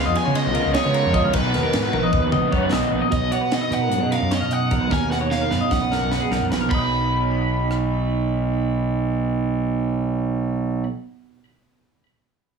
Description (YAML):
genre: math rock and midwest emo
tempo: 301 BPM (eighths)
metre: 9/8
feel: straight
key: B lydian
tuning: A4 = 441 Hz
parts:
  - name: overdriven electric guitar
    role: melody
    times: 0.0-10.8 s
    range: B4 to B5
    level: -26 LUFS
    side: equal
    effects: plate reverb, digital delay
  - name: electric guitar through a small old amp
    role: arpeggios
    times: 0.0-11.0 s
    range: F#4 to B5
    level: -26 LUFS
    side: left 5 dB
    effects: wide subtle chorus, plate reverb, digital delay
  - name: crunchy overdriven guitar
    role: riff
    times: 0.0-3.1 s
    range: B2 to E#4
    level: -24 LUFS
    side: right 2 dB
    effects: none
  - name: fuzz fingered electric bass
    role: bass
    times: 0.0-10.8 s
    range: A#1 to C#3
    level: -23 LUFS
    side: right 1 dB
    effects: overdrive
  - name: crisp fusion drum kit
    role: drums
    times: 0.2-7.8 s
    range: crash cymbal, hi-hat, kick drum, ride cymbal, rim click, snare drum, toms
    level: -26 LUFS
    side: right 1 dB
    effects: none
  - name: clean electric guitar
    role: accompaniment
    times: 3.1-11.0 s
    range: F#2 to F#4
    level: -25 LUFS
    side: right 11 dB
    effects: spring reverb
room: light reverb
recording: heavily compressed radio sound, multiband compression, studio ambience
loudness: -19 LUFS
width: side -6 dB against mid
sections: 0.0-3.1 A section; 3.1-6.7 B section; 6.7-10.3 C section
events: drum fill 1.9-3.1, 4.9-6.7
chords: 0.0 C#9; 1.3 Bmaj7; 6.7 B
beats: 0.16 0.36 0.55 0.75 0.95 1.14 | 1.34 1.54 1.73 1.93 2.13 2.33 2.52 2.72 2.92 | 3.12 3.32 3.52 3.71 3.91 4.11 4.31 4.51 4.71 | 4.91 5.11 5.31 5.51 5.71 5.91 6.11 6.30 6.50 | 6.70 6.90 7.10 7.30 7.50 7.70 7.90 8.10 8.30 | 8.50 8.70 8.90 9.10 9.30 9.50 9.70 9.90 10.10